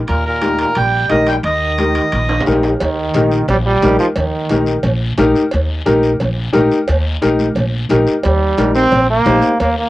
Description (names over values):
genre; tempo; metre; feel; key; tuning
latin, cumbia; 177 BPM; 4/4; straight; Eb major; A4 = 439 Hz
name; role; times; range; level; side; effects
accordion; melody; 0.1-2.4 s; Bb4 to G5; -16 LUFS; right 1 dB; cassette tape
bright trombone; second line; 0.1-4.8, 8.2-9.9 s; Bb2 to C4; -17 LUFS; right 2 dB; cassette tape
upright bass; bass; 0.1-9.9 s; Bb1 to Eb2; -18 LUFS; equal; none
congas; percussion; 0.1-9.4 s; none; -25 LUFS; right 1 dB; none
guiro; percussion; 0.1-9.9 s; none; -31 LUFS; left 5 dB; none
timbales and cowbell; percussion; 0.1-9.8 s; none; -24 LUFS; right 2 dB; none
warm upright piano; accompaniment; 0.4-9.5 s; Eb4 to C5; -15 LUFS; left 2 dB; cassette tape
room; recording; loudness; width
wet booth ambience, RT60 0.2 s; home recording on cassette; -12 LUFS; side -16 dB against mid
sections
0.0-2.8 A section; 2.8-9.9 B section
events
drum fill 2.3-2.8; trombone solo 2.8-9.9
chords
0.0 Eb